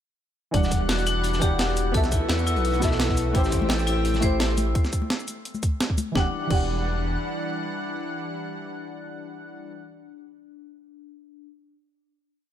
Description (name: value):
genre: liquid drum and bass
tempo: 171 BPM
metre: 4/4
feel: straight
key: E minor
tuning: A4 = 440 Hz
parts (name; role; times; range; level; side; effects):
- deep mellow chord stab; accompaniment; 0.5-11.5 s; E3 to F#5; -30 LUFS; right 1 dB; chorus, cassette tape, dub echo
- lush unison pad; sustained chords; 0.5-9.7 s; E3 to F#5; -32 LUFS; right 1 dB; chorus
- vibraphone with hard mallets; arpeggios; 0.5-11.5 s; D4 to C5; -31 LUFS; left 6 dB; dub echo
- dark detuned saw bass; bass; 0.5-7.2 s; E1 to E2; -26 LUFS; equal; none
- breakbeat sampler-style drum kit; drums; 0.5-6.6 s; cabasa, crash cymbal, hi-hat, snare drum; -30 LUFS; right 1 dB; none
- crunchy breakbeat drum kit; drums; 0.5-4.7 s; hi-hat, snare drum; -34 LUFS; equal; high-pass filter on hats, high-pass filter on snare, high-pass filter on room
- electronic kick drum; drums; 0.5-6.6 s; none; -24 LUFS; equal; none
- congas; percussion; 3.6-6.1 s; none; -34 LUFS; left 4 dB; dub echo
room: light reverb, studio ambience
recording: echo-heavy mix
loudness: -22 LUFS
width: side -10 dB against mid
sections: 0.5-6.2 drop; 6.2-9.0 final chord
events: drop 0.5-6.2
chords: 0.5 Em9; 1.9 B7sus4; 3.3 Am7; 4.8 N.C.; 6.2 Em9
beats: | 0.54 0.89 1.24 1.59 | 1.94 2.29 2.65 3.00 | 3.35 3.70 4.05 4.40 | 4.75 5.10 5.45 5.80 | 6.15 6.50 6.86 7.21 | 7.56 7.91 8.26 8.61